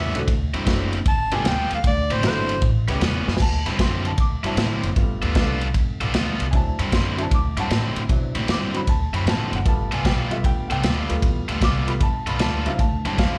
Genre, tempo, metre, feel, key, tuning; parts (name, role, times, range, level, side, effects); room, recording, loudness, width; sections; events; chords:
electric blues shuffle; 154 BPM; 4/4; swing 67% on 8ths; D mixolydian; A4 = 439 Hz
clear harmonica; melody; 0.0-2.6 s; C5 to A5; -27 LUFS; equal; overdrive, slapback echo
cranked stack guitar; riff; 0.0-13.4 s; A2 to A4; -29 LUFS; equal; overdrive, slapback echo
upright bass; bass; 0.0-13.4 s; F#1 to B2; -27 LUFS; equal
vintage drum kit; drums; 0.1-13.3 s; crash cymbal, kick drum, ride cymbal, snare drum; -25 LUFS; equal
clear upright piano; accompaniment; 0.2-13.4 s; F#3 to D6; -32 LUFS; equal; slapback echo
little or no reverb; live gig heard through the venue's PA, club reverb; -22 LUFS; mono
0.0-3.4 A section; 3.4-13.4 A section
harmonica solo 0.0-3.4; drum fill 3.2
0.3 D9; 1.1 G9; 1.8 D9; 2.6 A9; 3.4 D9; 5.0 G9; 6.5 D9; 9.7 G9; 12.8 D9